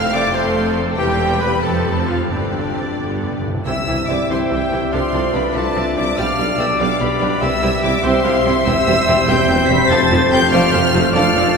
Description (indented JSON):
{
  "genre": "classical, dramatic, fast romantic movement for symphony orchestra",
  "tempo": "96 BPM (dotted quarters)",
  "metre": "6/8",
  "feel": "rubato",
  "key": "C major",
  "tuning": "A4 = 440 Hz",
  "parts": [
    { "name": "rich studio violin section", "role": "melody", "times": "0.0-11.6 s", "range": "D5 to B6", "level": "-22 LUFS", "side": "left 2 dB", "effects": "none" },
    { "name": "bright clarinet", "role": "second line", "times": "0.0-11.6 s", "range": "D4 to G5", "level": "-24 LUFS", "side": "left 2 dB", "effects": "none" },
    { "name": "dark symphonic violin section", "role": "second line", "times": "0.0-11.5 s", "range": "G4 to F5", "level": "-26 LUFS", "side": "left 3 dB", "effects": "none" },
    { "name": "mellow large flute ensemble", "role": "second line", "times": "0.0-11.6 s", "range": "D4 to B5", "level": "-23 LUFS", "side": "equal", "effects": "none" },
    { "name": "mellow oboe", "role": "second line", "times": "0.0-3.4 s", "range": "D4 to F5", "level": "-29 LUFS", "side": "equal", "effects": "none" },
    { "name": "rich symphonic viola section", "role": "accompaniment", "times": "0.0-11.4 s", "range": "D3 to F4", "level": "-24 LUFS", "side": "right 1 dB", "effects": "none" },
    { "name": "rich symphonic cello section", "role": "bass", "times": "0.0-11.4 s", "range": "E2 to C3", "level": "-24 LUFS", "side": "right 2 dB", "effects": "none" },
    { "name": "rich symphonic double bass section", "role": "bass", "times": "0.0-11.4 s", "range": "E1 to C2", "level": "-24 LUFS", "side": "right 1 dB", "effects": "none" },
    { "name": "dark French horn section", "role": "sustained chords", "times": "0.1-11.6 s", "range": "B3 to A4", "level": "-25 LUFS", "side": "left 2 dB", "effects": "none" },
    { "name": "timpani", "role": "percussion", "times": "2.3-4.3 s", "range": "G2 to C3", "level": "-30 LUFS", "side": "left 1 dB", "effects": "none" },
    { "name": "clear trombone section", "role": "sustained chords", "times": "3.7-11.6 s", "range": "B2 to A3", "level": "-27 LUFS", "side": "right 1 dB", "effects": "none" },
    { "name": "warm trumpet", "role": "stabs", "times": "3.7-11.6 s", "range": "A4 to E5", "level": "-22 LUFS", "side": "equal", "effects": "none" },
    { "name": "mellow tuba", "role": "bass", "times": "3.7-11.5 s", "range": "E1 to C2", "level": "-26 LUFS", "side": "right 2 dB", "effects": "none" }
  ],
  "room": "wet cathedral reverb, RT60 4.8 s",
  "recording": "minimal, uncompressed stereo recording",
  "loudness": "-14 LUFS",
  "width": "side -5 dB against mid",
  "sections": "0.0-3.7 A section; 3.7-11.6 B section",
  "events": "timpani fill 3.0-3.7",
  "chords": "0.0 F; 1.0 C/E; 1.6 F; 2.3 Gsus4; 3.0 G; 3.7 C; 4.9 Dm7/C; 6.2 G7/B; 7.4 C; 8.7 C/E; 9.9 F"
}